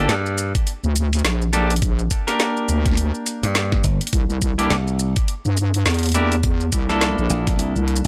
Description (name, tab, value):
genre	glitch hop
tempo	104 BPM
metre	4/4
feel	swing 59% on 16ths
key	G dorian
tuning	A4 = 441 Hz
part	clean electric guitar	stabs	0.0-8.1 s	Bb3 to Bb4	-26 LUFS	equal	sidechain pumping, analog delay
part	wobble bass	bass	0.0-8.0 s	Bb1 to G2	-22 LUFS	equal	chorus, tube saturation
part	slap bass	bass	0.1-8.1 s	G1 to G2	-23 LUFS	equal	none
part	drum and bass drum kit	drums	0.1-8.1 s	hi-hat, shaker, snare drum	-26 LUFS	equal	overdrive, small room ambience
part	electronic kick drum	drums	0.6-7.6 s	none	-23 LUFS	equal	overdrive, small room ambience
room	digital ambience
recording	dry, gritty hardware recording, transformer saturation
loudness	-20 LUFS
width	mono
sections	0.0-8.1 A section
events	none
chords	0.0 Gm; 4.1 C7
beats	0.09 0.67 1.24 | 1.82 2.40 2.98 3.55 | 4.13 4.71 5.28 5.86 | 6.44 7.01 7.59